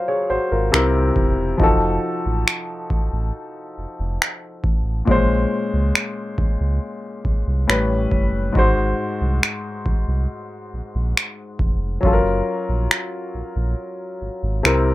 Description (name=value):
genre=contemporary R&B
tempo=69 BPM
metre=4/4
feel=straight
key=unclear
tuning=A4 = 440 Hz
part: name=warm concert grand piano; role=accompaniment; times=0.0-14.9 s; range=Ab2 to F5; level=-22 LUFS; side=left 2 dB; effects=none
part: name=sub bass with octave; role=bass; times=0.3-14.9 s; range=E1 to Db2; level=-22 LUFS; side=equal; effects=none
part: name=booming analog drum machine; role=drums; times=0.7-14.8 s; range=finger snaps, kick drum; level=-18 LUFS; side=equal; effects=none
room=little or no reverb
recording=none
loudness=-18 LUFS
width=side -17 dB against mid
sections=0.0-14.9 A section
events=break 0.0-8.6; hi-hats muted 5.1-8.6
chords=0.0 Gbmaj7; 0.7 C7; 1.6 F7b9; 5.1 Bbm9; 7.7 A9; 8.6 Ab7; 12.0 Gbmaj7